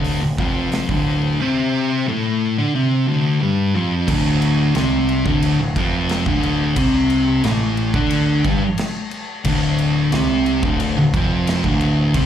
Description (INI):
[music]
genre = stoner and doom metal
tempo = 89 BPM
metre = 4/4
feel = straight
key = D minor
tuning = A4 = 443 Hz
[part]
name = thick fuzz guitar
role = riff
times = 0.0-12.3 s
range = D2 to D4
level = -20 LUFS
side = left 6 dB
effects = distortion, slapback echo
[part]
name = thick fuzz guitar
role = riff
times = 0.0-12.3 s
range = D2 to D4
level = -20 LUFS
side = right 6 dB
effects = distortion
[part]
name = growling picked electric bass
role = bass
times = 0.0-12.3 s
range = D1 to D2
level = -24 LUFS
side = equal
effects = overdrive
[part]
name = big rock drum kit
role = drums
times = 0.0-12.3 s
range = crash cymbal, hi-hat, kick drum, snare drum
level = -24 LUFS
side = equal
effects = none
[sound]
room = moderate club reverb, RT60 0.7 s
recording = live gig heard through the venue's PA, club reverb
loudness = -16 LUFS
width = side -10 dB against mid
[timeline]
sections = 0.0-4.1 A section; 4.1-12.3 B section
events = none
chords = 0.0 Dm